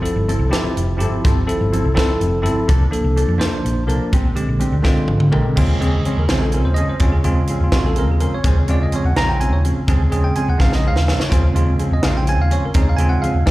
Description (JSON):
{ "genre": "electric jazz fusion", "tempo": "83 BPM (dotted quarters)", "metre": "6/8", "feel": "straight", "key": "unclear", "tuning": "A4 = 440 Hz", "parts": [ { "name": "bell-like tine electric piano", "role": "accompaniment", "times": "0.0-13.5 s", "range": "Db3 to Bb5", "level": "-20 LUFS", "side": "equal", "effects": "fast stereo tremolo, plate reverb" }, { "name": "hollow-body short-scale fingered electric bass", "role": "bass", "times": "0.0-13.5 s", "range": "F1 to F2", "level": "-18 LUFS", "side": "equal", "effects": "none" }, { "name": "crisp fusion drum kit", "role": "drums", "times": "0.1-13.5 s", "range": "crash cymbal, hi-hat, kick drum, snare drum, toms", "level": "-19 LUFS", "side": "equal", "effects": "none" }, { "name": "mellow electric guitar", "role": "stabs", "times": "0.3-13.5 s", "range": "F3 to A4", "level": "-25 LUFS", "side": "equal", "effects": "wide subtle chorus, plate reverb, slapback echo" } ], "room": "light reverb", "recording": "live gig heard through the venue's PA, recital hall reverb", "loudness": "-15 LUFS", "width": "side -17 dB against mid", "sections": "0.0-5.6 A section; 5.6-13.5 B section", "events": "drum fill 4.8-5.6, 10.6-11.3", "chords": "0.0 G13sus4; 2.7 C13sus4; 4.1 A#13; 5.6 Eb13sus4" }